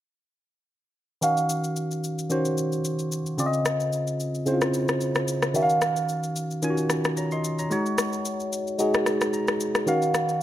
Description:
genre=amapiano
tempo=111 BPM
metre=4/4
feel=swing 55% on 16ths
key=Eb dorian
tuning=A4 = 445 Hz
part: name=tine electric piano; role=accompaniment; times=1.2-10.4 s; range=Db3 to C6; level=-24 LUFS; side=equal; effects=phaser
part: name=electronic shaker and rim click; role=drums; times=1.2-10.4 s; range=none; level=-28 LUFS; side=left 2 dB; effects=none
room=moderate lush hall reverb, RT60 1.7 s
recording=none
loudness=-23 LUFS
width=side -12 dB against mid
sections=1.2-10.4 A section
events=kick muted 8.8-9.9; tine electric piano fill 9.1-9.9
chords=1.2 Ebm9; 3.4 Dbmaj9; 5.5 Ebm9; 7.7 Ab7sus4; 9.9 Ebm9

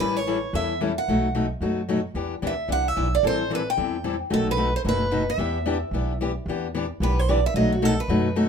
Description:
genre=acoustic string swing (jazz manouche)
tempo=222 BPM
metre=4/4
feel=swing 57% on 8ths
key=E minor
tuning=A4 = 440 Hz
part: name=picked steel-string acoustic guitar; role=melody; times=0.0-8.3 s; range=F#4 to G5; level=-25 LUFS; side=right 3 dB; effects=none
part: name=picked steel-string acoustic guitar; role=accompaniment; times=0.0-8.5 s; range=B2 to A4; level=-25 LUFS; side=left 3 dB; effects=none
part: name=upright bass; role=bass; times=0.0-8.5 s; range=F#1 to F#2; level=-28 LUFS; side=right 1 dB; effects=none
room=moderate studio reverb, RT60 0.5 s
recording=minimal, uncompressed stereo recording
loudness=-22 LUFS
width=side -7 dB against mid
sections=0.0-6.5 A section; 6.5-8.5 B section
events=steel-string acoustic guitar solo 6.5-8.5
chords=0.0 A7; 1.1 B7; 2.2 Em7; 3.2 Am7; 4.3 B7; 5.4 Em7; 7.6 B7

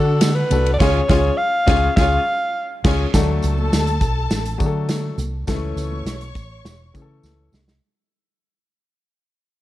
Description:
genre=uptempo 1960s-style soul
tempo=102 BPM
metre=4/4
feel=straight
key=unclear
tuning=A4 = 441 Hz
part: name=breathy alto saxophone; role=melody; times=0.0-2.8 s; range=A4 to E#5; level=-20 LUFS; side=equal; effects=none
part: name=warm studio string section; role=second line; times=0.0-7.5 s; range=D4 to C#6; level=-29 LUFS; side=equal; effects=none
part: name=warm grand piano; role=accompaniment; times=0.0-7.5 s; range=E3 to A4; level=-25 LUFS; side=left 6 dB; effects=none
part: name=vintage muted fingered electric bass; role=bass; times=0.0-7.8 s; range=E1 to D3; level=-21 LUFS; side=equal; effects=none
part: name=natural country drum kit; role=drums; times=0.2-7.8 s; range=crash cymbal, hi-hat, kick drum, ride cymbal, snare drum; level=-20 LUFS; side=right 1 dB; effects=none
part: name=congas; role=percussion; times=0.2-7.7 s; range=none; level=-33 LUFS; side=right 4 dB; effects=none
part: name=tambourine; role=percussion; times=0.2-7.7 s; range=none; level=-36 LUFS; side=right 5 dB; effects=none
room=small room ambience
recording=cassette tape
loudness=-16 LUFS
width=side -15 dB against mid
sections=0.0-3.1 A section; 3.1-7.8 B section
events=band accent 0.8-3.1; fade-out 3.1-7.8; drum fill 7.2-7.8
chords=0.0 D; 0.8 C#; 3.1 D; 5.5 A

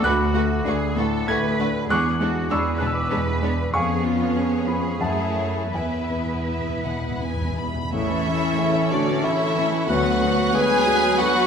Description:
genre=classical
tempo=78-99 BPM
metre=3/4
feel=rubato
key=A major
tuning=A4 = 439 Hz
part: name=rich studio violin section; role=melody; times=0.0-11.5 s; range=B4 to B5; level=-30 LUFS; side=left 2 dB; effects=none
part: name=warm grand piano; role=melody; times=0.0-11.5 s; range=D2 to G#6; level=-24 LUFS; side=left 2 dB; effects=none
part: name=warm symphonic violin section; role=second line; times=0.0-11.5 s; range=C#4 to G#4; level=-29 LUFS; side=equal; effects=none
part: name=rich studio viola section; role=accompaniment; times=0.0-11.5 s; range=C#3 to C#4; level=-29 LUFS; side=right 1 dB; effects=none
part: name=rich symphonic cello section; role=bass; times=0.0-10.4 s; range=D2 to B4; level=-30 LUFS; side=right 3 dB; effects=none
part: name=rich symphonic double bass section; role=bass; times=0.0-10.4 s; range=A1 to F#2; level=-29 LUFS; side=right 3 dB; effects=none
part: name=timpani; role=percussion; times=5.7-8.9 s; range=E2 to A2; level=-32 LUFS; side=equal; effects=none
part: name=clear oboe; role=second line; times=7.9-11.5 s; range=B4 to C#5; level=-30 LUFS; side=right 3 dB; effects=none
part: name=hollow flute section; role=second line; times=7.9-11.5 s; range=F#4 to B4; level=-28 LUFS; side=left 3 dB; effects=none
part: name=warm clarinet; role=second line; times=7.9-11.5 s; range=D4 to G#4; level=-29 LUFS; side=left 1 dB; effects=none
part: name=mellow bassoon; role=accompaniment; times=7.9-11.5 s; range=F#3 to A3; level=-30 LUFS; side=right 3 dB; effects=none
part: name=mellow French horn section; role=sustained chords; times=7.9-11.5 s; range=D3 to G#3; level=-27 LUFS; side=left 2 dB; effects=none
room=wet scoring stage reverb, RT60 1.8 s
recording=minimal, uncompressed stereo recording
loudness=-20 LUFS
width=side -7 dB against mid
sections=0.0-7.9 A section; 7.9-11.5 B section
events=timpani fill 5.7-7.9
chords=0.0 Bm7/D; 1.9 E13; 3.7 C#7/E#; 5.0 F#m7; 5.7 E; 7.9 A; 9.9 Bm/D

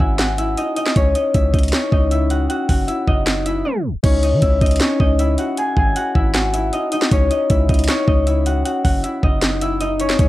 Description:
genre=hip hop, trap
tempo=156 BPM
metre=4/4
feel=half-time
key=C# minor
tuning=A4 = 440 Hz
part: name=concert harp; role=melody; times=0.0-10.3 s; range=C#4 to G#5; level=-19 LUFS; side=left 2 dB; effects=low-pass filter
part: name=warm 808-style bass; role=bass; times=0.0-10.3 s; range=F#1 to E3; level=-18 LUFS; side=equal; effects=none
part: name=trap drum kit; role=drums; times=0.0-10.3 s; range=crash cymbal, handclaps, hi-hat, kick drum, snare drum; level=-19 LUFS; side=equal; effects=cassette tape
part: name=warm analog pad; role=sustained chords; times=10.2-10.3 s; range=C#3 to E4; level=-26 LUFS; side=equal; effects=chorus, cassette tape
room=digital ambience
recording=home recording on cassette, tape stop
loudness=-15 LUFS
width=side -16 dB against mid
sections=0.0-4.0 A section; 4.0-10.3 B section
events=break 3.7-4.0; tape stop 3.7-4.0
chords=0.0 G#5; 1.0 C#m; 2.5 F#5; 4.0 C#m; 5.6 G#5; 7.1 C#m; 8.7 F#5

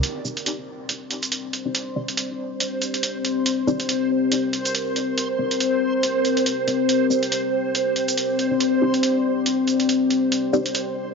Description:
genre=deep dubstep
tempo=140 BPM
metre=4/4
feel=swing 57% on 16ths, half-time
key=unclear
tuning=A4 = 440 Hz
part: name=deep dark ambient pad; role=sustained chords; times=0.0-11.1 s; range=C4 to D5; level=-23 LUFS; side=left 4 dB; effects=chorus, built-in reverb
part: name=electronic hi-hat and shaker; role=drums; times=0.0-10.8 s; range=none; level=-25 LUFS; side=right 3 dB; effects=none
part: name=backwards swelling texture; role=texture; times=1.7-11.1 s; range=C5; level=-26 LUFS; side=right 4 dB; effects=built-in reverb
part: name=filtered dub chord stab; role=stabs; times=0.2-10.6 s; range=C4 to D5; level=-28 LUFS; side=left 2 dB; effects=phaser, dub echo
room=moderate huge ambient reverb, RT60 4.4 s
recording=dry, gritty hardware recording, nothing above 7.5 kHz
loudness=-20 LUFS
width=side -4 dB against mid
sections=0.0-11.1 A section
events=none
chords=0.0 Cmadd9

